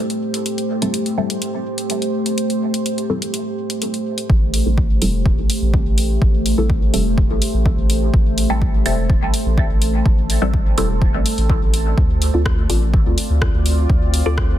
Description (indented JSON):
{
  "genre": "dub techno",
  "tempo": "125 BPM",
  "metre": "4/4",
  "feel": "straight",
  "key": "A minor",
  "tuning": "A4 = 441 Hz",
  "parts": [
    { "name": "deep dark ambient pad", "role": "sustained chords", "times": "0.0-14.6 s", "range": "A3 to D5", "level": "-23 LUFS", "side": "equal", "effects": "chorus, built-in reverb, sidechain pumping" },
    { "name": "deep house drum kit", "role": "drums", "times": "0.1-14.5 s", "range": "hi-hat, rim click", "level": "-25 LUFS", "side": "left 1 dB", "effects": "studio reverb, soft clipping on snare" },
    { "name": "filtered dub chord stab", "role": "stabs", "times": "0.8-14.6 s", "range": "G3 to D5", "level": "-25 LUFS", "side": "equal", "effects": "phaser, vintage 12-bit sampler grit, sidechain pumping, dub echo" },
    { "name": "soft dub sub bass", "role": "bass", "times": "4.3-14.6 s", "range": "E1 to D2", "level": "-19 LUFS", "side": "equal", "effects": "sidechain pumping" },
    { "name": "electronic kick drum", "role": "drums", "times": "4.3-14.5 s", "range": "none", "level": "-18 LUFS", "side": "equal", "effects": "studio reverb" }
  ],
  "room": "light reverb, digital ambience",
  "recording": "dense, heavily limited modern master",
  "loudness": "-15 LUFS",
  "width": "side -12 dB against mid",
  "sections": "0.0-4.3 A section; 4.3-14.6 B section",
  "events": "filter sweep on ambient pad 0.0-4.3",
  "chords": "0.0 Am7; 12.0 Dm7",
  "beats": "| 0.46 0.94 1.42 1.90 | 2.38 2.86 3.34 3.82 | 4.30 4.78 5.26 5.74 | 6.22 6.70 7.18 7.66 | 8.14 8.62 9.10 9.58 | 10.06 10.54 11.02 11.50 | 11.98 12.46 12.94 13.42 | 13.90 14.38"
}